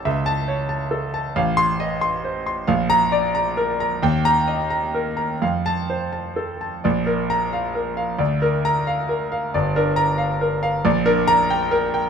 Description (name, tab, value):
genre	classical, virtuoso piano study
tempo	90 BPM (dotted quarters)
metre	6/8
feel	rubato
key	Bb major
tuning	A4 = 440 Hz
part	clear concert grand piano	solo	0.0-12.1 s	G1 to C6	-18 LUFS	equal	none
room	moderate stone room reverb, RT60 1.3 s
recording	minimal, uncompressed stereo recording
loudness	-19 LUFS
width	side -7 dB against mid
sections	0.0-6.8 A section; 6.8-12.1 B section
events	none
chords	0.1 A/C#; 1.4 F7/A; 2.7 Bb; 4.0 Eb; 5.4 F; 6.8 Bb; 8.2 Bb/D; 9.5 Gm7; 10.9 Gm/Bb